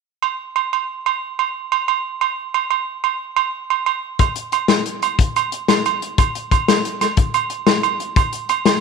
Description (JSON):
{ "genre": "highlife", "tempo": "121 BPM (dotted quarters)", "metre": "12/8", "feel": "straight", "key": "none", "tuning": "none", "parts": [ { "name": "agogo bells", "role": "percussion", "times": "0.2-8.8 s", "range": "none", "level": "-19 LUFS", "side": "right 11 dB", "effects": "none" }, { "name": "warm soul drum kit", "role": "drums", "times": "4.2-8.7 s", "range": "hi-hat, kick drum, snare drum", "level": "-17 LUFS", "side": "left 5 dB", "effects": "none" } ], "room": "moderate echo chamber reverb, RT60 1.5 s, studio reverb", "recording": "1960s-style stereo", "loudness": "-17 LUFS", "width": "side -5 dB against mid", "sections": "0.2-4.2 A section; 4.2-8.8 B section", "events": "none", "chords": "none", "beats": "| 0.21 0.71 1.21 1.71 | 2.21 2.71 3.20 3.70 | 4.20 4.70 5.19 5.69 | 6.18 6.68 7.18 7.67 | 8.17 8.66" }